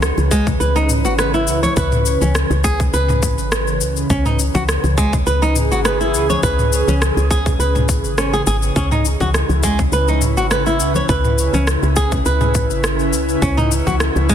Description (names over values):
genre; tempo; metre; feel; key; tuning
organic downtempo; 103 BPM; 4/4; swing 53% on 16ths; C# minor; A4 = 440 Hz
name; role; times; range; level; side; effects
airy breathy pad; sustained chords; 0.0-14.3 s; C#3 to B4; -23 LUFS; right 1 dB; chorus, tremolo, sidechain pumping
woody FM bass; bass; 0.0-14.3 s; G#1 to C#2; -19 LUFS; equal; tube saturation, sidechain pumping
organic electronic drum kit; drums; 0.0-14.3 s; cabasa, rim click, toms; -22 LUFS; left 1 dB; overdrive
congas and bongos; percussion; 0.2-14.3 s; none; -27 LUFS; left 3 dB; none
flamenco guitar; arpeggios; 0.3-14.3 s; G#3 to C#5; -20 LUFS; equal; ping-pong delay
electronic kick drum; drums; 0.3-14.3 s; none; -21 LUFS; equal; overdrive
room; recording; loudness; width
light reverb, digital ambience; dense, heavily limited modern master; -14 LUFS; side -9 dB against mid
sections
0.0-14.3 A section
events
none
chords
0.0 C#m7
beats
0.02 0.61 1.19 | 1.77 2.35 2.94 3.52 | 4.10 4.68 5.27 5.85 | 6.43 7.01 7.60 8.18 | 8.76 9.35 9.93 10.51 | 11.09 11.68 12.26 12.84 | 13.42 14.01